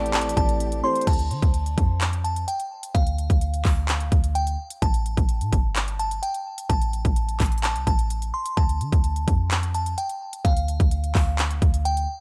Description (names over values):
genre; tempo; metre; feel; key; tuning
hip hop, trap; 128 BPM; 4/4; half-time; D minor; A4 = 440 Hz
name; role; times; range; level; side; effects
glassy synth bell; melody; 0.0-12.1 s; F5 to C6; -32 LUFS; equal; chorus, low-pass filter, tape echo
gliding portamento lead; second line; 0.0-1.1 s; C5 to D5; -32 LUFS; equal; chorus, tape echo
muted felt-like synth keys; accompaniment; 0.0-1.1 s; A3 to A4; -33 LUFS; equal; chorus, low-pass filter
warm symphonic string section; sustained chords; 0.0-1.0 s; E3 to G4; -38 LUFS; equal; none
clean 808-style bass; bass; 0.0-12.1 s; G1 to D3; -27 LUFS; equal; none
trap drum kit; drums; 0.1-12.1 s; crash cymbal, handclaps, hi-hat, kick drum; -26 LUFS; equal; none
room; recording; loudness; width
digital ambience; none; -23 LUFS; mono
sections
0.0-1.1 A section; 1.1-12.2 B section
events
none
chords
0.0 Am7; 1.1 Dm; 4.8 A7(no3); 8.6 Dm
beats
0.14 0.60 | 1.07 1.54 2.01 2.48 | 2.95 3.42 3.88 4.35 | 4.82 5.29 5.76 6.23 | 6.70 7.17 7.63 8.10 | 8.57 9.04 9.51 9.98 | 10.45 10.92 11.38 11.85